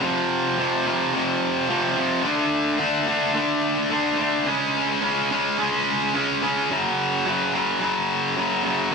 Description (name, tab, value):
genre	rock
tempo	108 BPM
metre	4/4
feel	straight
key	unclear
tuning	A4 = 442 Hz
part	tight distorted guitar	solo	0.0-8.9 s	F2 to D4	-20 LUFS	equal	distortion
room	light reverb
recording	none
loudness	-20 LUFS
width	side -4 dB against mid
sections	0.0-8.9 A section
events	none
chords	0.0 F5; 2.3 D5; 4.5 Db5; 6.7 Gb5